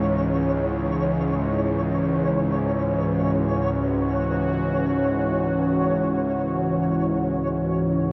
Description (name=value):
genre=ambient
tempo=free time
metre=none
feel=none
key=C# minor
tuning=A4 = 440 Hz
part: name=sweeping resonant pad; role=sustained chords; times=0.0-8.1 s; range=E3 to G#4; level=-25 LUFS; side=equal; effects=chorus
part: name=bowed-like drone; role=drone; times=0.0-8.1 s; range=C#2 to G#2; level=-28 LUFS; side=equal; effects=built-in reverb
part: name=flickering grainy texture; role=texture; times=0.0-8.1 s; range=C#5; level=-32 LUFS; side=equal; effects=built-in reverb
room=wet cathedral reverb, RT60 6.2 s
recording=worn, warbling old tape, cassette tape, warbly pitch drift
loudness=-23 LUFS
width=mono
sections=0.0-8.1 A section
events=none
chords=0.0 C#m